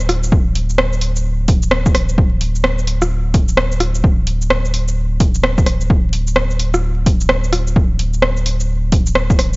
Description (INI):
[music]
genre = future garage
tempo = 129 BPM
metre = 4/4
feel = swing 62% on 16ths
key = unclear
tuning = A4 = 441 Hz
[part]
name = warm sub bass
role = bass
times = 0.0-9.6 s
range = D1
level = -18 LUFS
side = equal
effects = sidechain pumping
[part]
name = deep house drum kit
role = drums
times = 0.0-9.6 s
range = hi-hat, rim click, shaker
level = -18 LUFS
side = equal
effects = overdrive, small room ambience
[part]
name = electronic kick drum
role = drums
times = 0.3-9.4 s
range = none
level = -14 LUFS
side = equal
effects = overdrive, small room ambience
[sound]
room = digital ambience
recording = dry, gritty hardware recording, vinyl crackle, nothing above 7.7 kHz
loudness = -13 LUFS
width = side -26 dB against mid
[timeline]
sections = 0.0-9.6 A section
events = none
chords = none